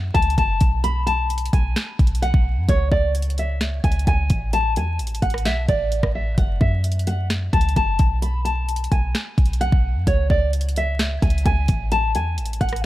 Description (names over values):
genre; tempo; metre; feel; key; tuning
hip hop, trap; 130 BPM; 4/4; half-time; F# minor; A4 = 440 Hz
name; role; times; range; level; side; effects
clean 808-style bass; bass; 0.0-12.9 s; F#1 to F#2; -21 LUFS; equal; none
nylon-string guitar; melody; 0.1-12.8 s; C#5 to B5; -24 LUFS; left 1 dB; low-pass filter
trap drum kit; drums; 0.1-12.8 s; hi-hat, kick drum, rim click, snare drum; -22 LUFS; equal; none
room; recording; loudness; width
little or no reverb; vinyl crackle; -18 LUFS; side -15 dB against mid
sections
0.0-12.9 A section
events
none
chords
0.0 F#m; 0.8 B5; 2.7 C#5; 4.5 A5; 6.4 F#m; 8.2 B5; 10.1 C#5; 11.9 A5